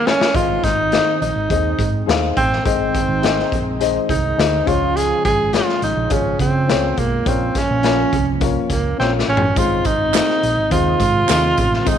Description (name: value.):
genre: uptempo 1960s-style soul.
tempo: 104 BPM.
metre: 4/4.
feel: straight.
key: Ab major.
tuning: A4 = 441 Hz.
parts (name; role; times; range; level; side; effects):
breathy tenor saxophone; melody; 0.0-12.0 s; Bb3 to Ab4; -19 LUFS; right 2 dB; none.
warm analog pad; sustained chords; 0.0-12.0 s; C3 to Eb4; -26 LUFS; right 2 dB; chorus.
raw garage drum kit; drums; 0.1-12.0 s; hi-hat, kick drum, snare drum, toms; -22 LUFS; left 2 dB; none.
dark upright piano; accompaniment; 0.3-12.0 s; Ab2 to F5; -23 LUFS; left 12 dB; none.
hollow-body short-scale fingered electric bass; bass; 0.3-12.0 s; Ab1 to Db3; -22 LUFS; right 2 dB; none.
tambourine and handclaps; percussion; 9.6-12.0 s; none; -28 LUFS; right 17 dB; none.
room: light reverb, small room ambience.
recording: 1960s-style stereo with parts hard left and right.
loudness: -15 LUFS.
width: side -9 dB against mid.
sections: 0.3-12.0 A section.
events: drum fill 0.0-0.3, 9.0-9.6; band accent 0.0-0.3.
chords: 0.3 Ab; 4.7 Db; 7.3 Bbm; 9.6 Ab.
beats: | 0.35 0.92 1.50 2.08 | 2.65 3.23 3.81 4.38 | 4.96 5.54 6.11 6.69 | 7.26 7.84 8.41 8.99 | 9.57 10.14 10.72 11.29 | 11.87.